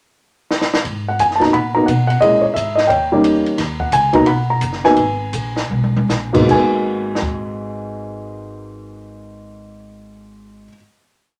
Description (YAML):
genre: jazz piano trio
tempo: 149-176 BPM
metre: 4/4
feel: swing 64% on 8ths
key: G# minor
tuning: A4 = 439 Hz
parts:
  - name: compact cocktail drum kit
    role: drums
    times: 0.5-7.3 s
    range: crash cymbal, hi-hat, kick drum, ride cymbal, snare drum, toms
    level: -26 LUFS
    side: equal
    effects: none
  - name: upright bass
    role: bass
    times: 0.8-10.7 s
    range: F#1 to B2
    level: -26 LUFS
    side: equal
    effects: none
  - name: dark grand piano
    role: melody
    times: 1.1-10.8 s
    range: G#2 to B5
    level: -17 LUFS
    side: equal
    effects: none
room: wet studio ambience, RT60 0.5 s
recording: none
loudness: -16 LUFS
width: mono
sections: 0.0-0.8 pickup bar; 0.8-6.5 A section; 6.5-9.7 final chord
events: drum fill 0.5-0.8, 5.7-6.1; slowing down 3.6-6.5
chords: 0.0 N.C.; 0.8 G#m9; 2.2 A#m7b5; 2.9 D#7; 3.6 G#m9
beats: 0.16 0.50 | 0.84 1.18 1.53 1.87 | 2.21 2.55 2.89 3.23 | 3.58 3.92 4.26 4.61 | 4.97 5.33 5.70 6.09 | 6.48 6.88 7.29 7.69 | 8.09 8.49 8.90 9.30